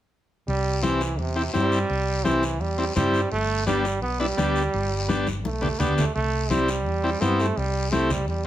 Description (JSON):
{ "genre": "latin, cumbia", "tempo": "169 BPM", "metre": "4/4", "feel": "straight", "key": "unclear", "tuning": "A4 = 440 Hz", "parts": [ { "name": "bright trombone", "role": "second line", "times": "0.5-8.5 s", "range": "C3 to B3", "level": "-27 LUFS", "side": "right 3 dB", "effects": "none" }, { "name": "hollow-body short-scale fingered electric bass", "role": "bass", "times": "0.5-8.5 s", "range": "G1 to G2", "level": "-27 LUFS", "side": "equal", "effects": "none" }, { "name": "congas", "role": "percussion", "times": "0.5-8.5 s", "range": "none", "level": "-30 LUFS", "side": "left 2 dB", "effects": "none" }, { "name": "guiro", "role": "percussion", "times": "0.5-8.5 s", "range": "none", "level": "-36 LUFS", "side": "left 4 dB", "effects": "none" }, { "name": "overdriven combo organ", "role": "accompaniment", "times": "0.8-8.5 s", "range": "B3 to G4", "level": "-25 LUFS", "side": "left 1 dB", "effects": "none" } ], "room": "moderate studio reverb, RT60 0.8 s", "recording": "none", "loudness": "-21 LUFS", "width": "side -12 dB against mid", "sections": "0.5-8.5 A section", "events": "drum fill 5.1-6.2", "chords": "0.5 C; 3.3 Gadd9; 6.2 C" }